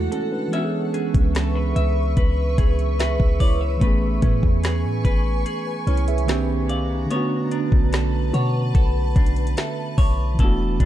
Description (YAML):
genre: contemporary R&B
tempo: 73 BPM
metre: 4/4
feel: straight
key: unclear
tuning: A4 = 440 Hz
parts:
  - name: mellow tine electric piano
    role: accompaniment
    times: 0.0-10.9 s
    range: D3 to E5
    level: -26 LUFS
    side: moving between equal and right 10 dB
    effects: auto-pan
  - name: granular cloud pad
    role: sustained chords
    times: 0.0-10.9 s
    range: D4 to D6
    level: -29 LUFS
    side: right 1 dB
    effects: built-in reverb
  - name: semi-hollow electric guitar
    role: arpeggios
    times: 0.0-10.9 s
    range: E3 to E5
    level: -30 LUFS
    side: left 1 dB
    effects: digital delay
  - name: warm 808-style bass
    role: bass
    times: 0.0-10.9 s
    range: D1 to B2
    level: -22 LUFS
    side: equal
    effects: none
  - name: celesta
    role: texture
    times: 0.0-0.1, 6.7-10.9 s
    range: E5 to B5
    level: -38 LUFS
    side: left 1 dB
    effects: digital delay
  - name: smooth R&B drum kit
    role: drums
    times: 0.1-10.9 s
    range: hi-hat, kick drum, snare drum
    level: -19 LUFS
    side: equal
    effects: none
room: digital ambience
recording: dark, warm production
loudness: -18 LUFS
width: side -12 dB against mid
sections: 0.0-10.9 A section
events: none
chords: 0.0 E9sus4; 0.5 C#m7; 3.8 Amaj9; 6.3 Cm9; 7.1 Bm9